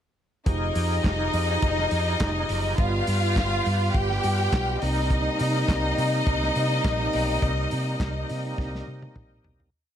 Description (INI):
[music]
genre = disco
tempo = 104 BPM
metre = 4/4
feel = straight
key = unclear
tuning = A4 = 438 Hz
[part]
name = rich symphonic string section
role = second line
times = 0.5-9.4 s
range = Eb4 to G5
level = -26 LUFS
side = left 1 dB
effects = none
[part]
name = bright tonewheel organ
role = sustained chords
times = 0.5-9.7 s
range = C3 to Ab4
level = -31 LUFS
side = equal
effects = overdrive, chorus vibrato, slow rotary speaker
[part]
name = hollow-body short-scale fingered electric bass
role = bass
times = 0.5-9.7 s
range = F1 to C3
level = -27 LUFS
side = equal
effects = none
[part]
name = warm soul drum kit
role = drums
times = 0.5-9.7 s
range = handclaps, hi-hat, kick drum, snare drum, toms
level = -29 LUFS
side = equal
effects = none
[sound]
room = light reverb, studio reverb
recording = none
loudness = -22 LUFS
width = side -10 dB against mid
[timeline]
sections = 0.5-9.7 verse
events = fade-out 7.4-9.7; drum fill 8.6-9.7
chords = 0.5 Fm9; 2.8 G7; 4.8 Cm7